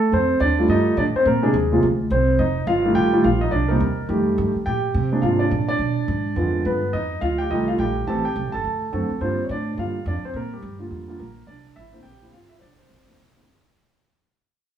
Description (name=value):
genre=jazz piano trio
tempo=211 BPM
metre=4/4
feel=swing 60% on 8ths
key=F mixolydian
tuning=A4 = 440 Hz
part: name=warm grand piano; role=melody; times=0.0-13.5 s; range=C3 to A5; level=-20 LUFS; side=right 1 dB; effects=none
part: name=upright bass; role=bass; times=0.1-13.7 s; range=F1 to C3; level=-24 LUFS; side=right 1 dB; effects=none
room=moderate large studio reverb, RT60 1.1 s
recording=band playing live in one room, small room ambience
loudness=-18 LUFS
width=side -9 dB against mid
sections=0.1-13.8 A section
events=fade-out 4.7-13.8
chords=0.1 F9; 1.3 Bb9; 2.4 F9; 3.5 Cm7; 4.1 F9; 4.7 Bb9; 5.8 Bdim7; 6.9 F9; 8.1 Am7; 8.6 D7; 9.2 Gm7; 11.5 C9; 12.6 F; 13.2 C5